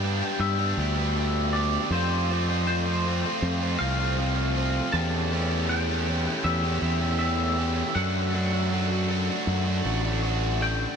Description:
post-rock; 79 BPM; 4/4; straight; A4 = 440 Hz
twangy electric guitar; melody; 0.0-11.0 s; C5 to A5; -31 LUFS; left 1 dB; lush chorus, analog delay
biting overdriven guitar; riff; 0.0-11.0 s; E3 to G4; -28 LUFS; right 1 dB
fuzz fingered electric bass; bass; 0.0-10.9 s; A1 to G2; -26 LUFS; equal; overdrive
moderate huge ambient reverb, RT60 6.9 s; dreamy mix soaked in reverb; -23 LUFS; side -6 dB against mid
0.0-11.0 A section
0.0 G; 1.9 F; 4.9 A7/E; 8.0 D/F#

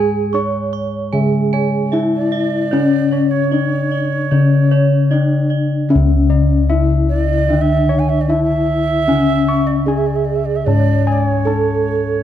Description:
Javanese gamelan; 75 BPM; 4/4; straight; C# pelog; A4 = 445 Hz
gamelan-type bronze metallophone; melody; 0.0-12.2 s; C#4 to C#5; -19 LUFS; equal
gamelan-type bronze metallophone; accompaniment; 0.0-12.2 s; C#3 to C#4; -18 LUFS; left 2 dB
gamelan-type bossed gongs; arpeggios; 0.0-11.9 s; C#5 to C#6; -26 LUFS; left 5 dB
gamelan-type bronze metallophone; arpeggios; 0.0-5.9 s; C#5 to C#6; -26 LUFS; right 7 dB
gamelan-type bossed gongs; bass; 0.0-12.2 s; C#2 to G#4-30c; -19 LUFS; left 1 dB
xiao; second line; 2.2-12.2 s; C#5 to G#5-31c; -22 LUFS; right 6 dB
moderate scoring stage reverb, RT60 1.5 s; close, detailed microphones; -13 LUFS; side -11 dB against mid
0.0-5.9 A section; 5.9-12.2 A section

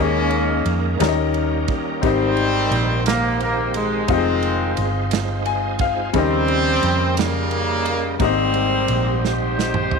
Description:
slow gospel; 58 BPM (dotted quarters); 6/8; straight; Ab major; A4 = 441 Hz
clear horn section; melody; 0.0-10.0 s; Db3 to C5; -22 LUFS; right 1 dB
bright grand piano; accompaniment; 0.0-10.0 s; Ab2 to Ab5; -22 LUFS; left 13 dB
bright tonewheel organ; sustained chords; 0.0-10.0 s; Db3 to Ab5; -28 LUFS; right 16 dB; fast rotary speaker, overdrive, chorus vibrato
hollow-body short-scale fingered electric bass; bass; 0.0-10.0 s; F1 to F2; -23 LUFS; right 2 dB
natural country drum kit; drums; 0.3-10.0 s; kick drum, ride cymbal, snare drum, toms; -26 LUFS; right 6 dB
light reverb, small room ambience; 1960s-style stereo with parts hard left and right; -17 LUFS; side -4 dB against mid
0.0-10.0 A section
grand piano fill 5.1-6.1; tonewheel organ fill 5.1-6.1; drum fill 9.2-10.0
0.0 Eb7sus4; 1.0 Eb7; 2.0 Abmaj7; 4.1 Fm7; 6.1 Eb7; 8.2 Abmaj7

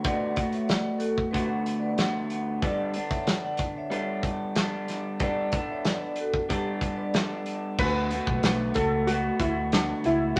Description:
indie pop, bedroom pop; 93 BPM; 4/4; straight; D major; A4 = 444 Hz
electric guitar through a small old amp; accompaniment; 0.0-10.4 s; D3 to A4; -31 LUFS; equal; warbly pitch drift
loose indie drum kit; drums; 0.0-10.4 s; crash cymbal, hi-hat, kick drum, snare drum; -31 LUFS; equal
vibraphone with medium hard mallets; second line; 0.1-7.1 s; F#4 to F#5; -35 LUFS; equal
warbly lo-fi synth keys; melody; 7.8-10.4 s; D4 to B4; -30 LUFS; equal; chorus
vintage muted fingered electric bass; bass; 7.8-10.4 s; B1 to D2; -35 LUFS; equal
moderate studio reverb, RT60 0.8 s; -27 LUFS; mono
0.0-7.8 A section; 7.8-10.4 B section
0.0 D6; 2.6 Gadd9; 7.8 D6

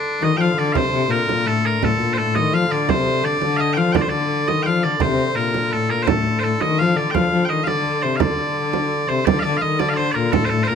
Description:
medieval dance; 113 BPM (dotted quarters); 6/8; straight; D phrygian; A4 = 440 Hz
loud bright bagpipes; melody; 0.0-10.8 s; D4 to G5; -21 LUFS; right 1 dB
dark hurdy-gurdy; drone; 0.0-10.8 s; D3; -28 LUFS; equal
rich viola da gamba; second line; 0.2-10.8 s; A2 to F3; -21 LUFS; left 5 dB
frame drum; percussion; 0.2-10.8 s; -23 LUFS; right 9 dB
moderate recital hall reverb, RT60 1.4 s; close, detailed microphones; -17 LUFS; side -7 dB against mid
0.8-9.3 A section; 9.3-10.8 B section

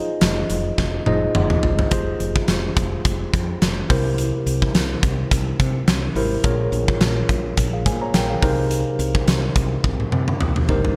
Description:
1980s-style pop; 106 BPM; 4/4; swing 55% on 16ths; F minor; A4 = 440 Hz
tine electric piano; accompaniment; 0.0-11.0 s; Bb2 to Bb5; -26 LUFS; equal
woody fretless electric bass; bass; 0.2-10.9 s; F1 to C3; -27 LUFS; equal
big rock drum kit; drums; 0.2-11.0 s; hi-hat, kick drum, snare drum, tambourine, toms; -23 LUFS; equal; gated reverb
light reverb, small room reverb; bright 1980s-style digital production; -20 LUFS; mono
0.0-1.9 A section; 1.9-11.0 B section
drum fill 0.8-1.9, 9.8-11.0
0.0 Fm7; 1.9 Fmadd9; 3.9 C7; 6.4 Bbm7; 8.4 Cm7

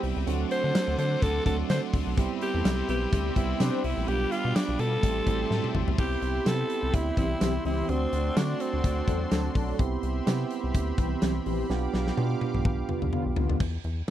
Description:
1980s-style pop; 126 BPM; 4/4; swing 55% on 16ths; A4 = 439 Hz
high-gain distorted guitar; accompaniment; 0.0-6.0 s; G2 to D4; -40 LUFS; left 14 dB; distortion, analog chorus
tine electric piano; accompaniment; 0.0-13.6 s; F#3 to G4; -32 LUFS; right 9 dB
brassy analog pad; sustained chords; 0.0-13.6 s; F#4 to D6; -38 LUFS; left 1 dB; chorus
rubbery square bass; bass; 0.0-14.0 s; A1 to D3; -30 LUFS; left 1 dB
big rock drum kit; drums; 0.0-14.1 s; crash cymbal, hi-hat, kick drum, snare drum, tambourine, toms; -30 LUFS; left 1 dB
raspy alto saxophone; melody; 0.5-9.6 s; C4 to C5; -30 LUFS; left 1 dB; slapback echo
mellow synth brass; stabs; 2.5-3.8, 7.2-13.6 s; D3 to C5; -33 LUFS; left 2 dB; chorus, phaser
little or no reverb; dry, close 1970s-style studio recording; -25 LUFS; side -12 dB against mid
0.0-6.0 A section; 6.0-13.6 B section
drum fill 5.5-6.0, 11.7-13.6
0.3 D7; 2.2 Cmaj7; 4.1 G7/B; 5.0 Am7; 6.0 Cmaj7; 7.9 D7; 9.8 Cmaj7; 11.7 G7/B

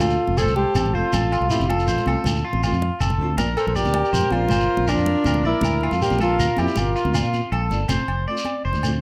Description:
highlife guitar band; 106 BPM (dotted quarters); 12/8; straight; F major; A4 = 443 Hz
mellow alto saxophone; melody; 0.0-7.3 s; D4 to A4; -25 LUFS; equal; tape echo
breathy trumpet; second line; 0.0-7.3 s; F4 to C5; -34 LUFS; equal; plate reverb
electric guitar at the edge of break-up; arpeggios; 0.0-9.0 s; F4 to D5; -29 LUFS; equal; lush chorus, tape echo
fingered electric bass; bass; 0.0-9.0 s; F1 to Bb2; -26 LUFS; equal
agogo bells; percussion; 0.0-9.0 s; -36 LUFS; equal
congas; percussion; 0.0-8.9 s; -32 LUFS; equal
shekere; percussion; 0.0-8.9 s; -30 LUFS; equal
nylon-string guitar; accompaniment; 0.4-9.0 s; F3 to F4; -33 LUFS; equal
light reverb; -21 LUFS; mono
0.0-7.9 A section; 7.9-9.0 B section
drum fill 7.3-7.9
0.0 F; 3.4 Bb; 7.9 F

